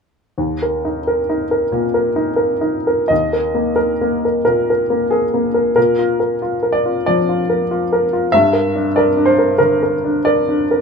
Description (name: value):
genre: neoclassical minimalist piano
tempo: 82-96 BPM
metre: 4/4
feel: rubato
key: unclear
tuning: A4 = 444 Hz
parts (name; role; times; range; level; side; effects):
- clear upright piano; solo; 0.4-10.8 s; Eb2 to Fb5; -14 LUFS; equal; none
room: moderate small room ambience, RT60 0.5 s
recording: minimal, uncompressed stereo recording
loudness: -14 LUFS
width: side -5 dB against mid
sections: 0.4-3.1 A section; 3.1-10.8 B section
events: none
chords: 0.4 Eb5; 5.8 Bb; 8.3 Gm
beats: | 0.38 1.06 1.72 2.39 | 3.10 3.78 4.46 5.12 | 5.77 6.42 7.05 7.68 | 8.32 8.96 9.60 10.27